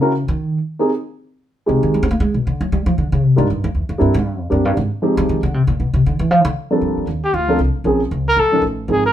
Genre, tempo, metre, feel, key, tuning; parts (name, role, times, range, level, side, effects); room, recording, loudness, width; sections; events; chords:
jazz, small-group swing and bop; 233 BPM; 4/4; swing 60% on 8ths; C minor; A4 = 439 Hz
dark baby grand piano; accompaniment; 0.0-9.0 s; G2 to Bb4; -18 LUFS; right 1 dB
upright bass; bass; 0.0-9.1 s; Ab1 to C4; -17 LUFS; equal
breathy trumpet; melody; 7.2-9.1 s; F4 to Bb4; -16 LUFS; left 1 dB
moderate studio reverb, RT60 0.6 s; band playing live in one room; -15 LUFS; side -11 dB against mid
0.0-6.8 A section; 6.8-9.1 B section
upright bass solo 0.0-6.8
0.1 N.C.; 0.6 Abmaj7; 1.7 Fm7; 2.2 Bm6; 2.7 Ebmaj9 (rootless); 3.7 C7; 4.8 Fm7; 5.8 Bmadd11; 6.3 G5; 6.8 Gm11; 7.9 Bbm9; 8.4 Ebsus2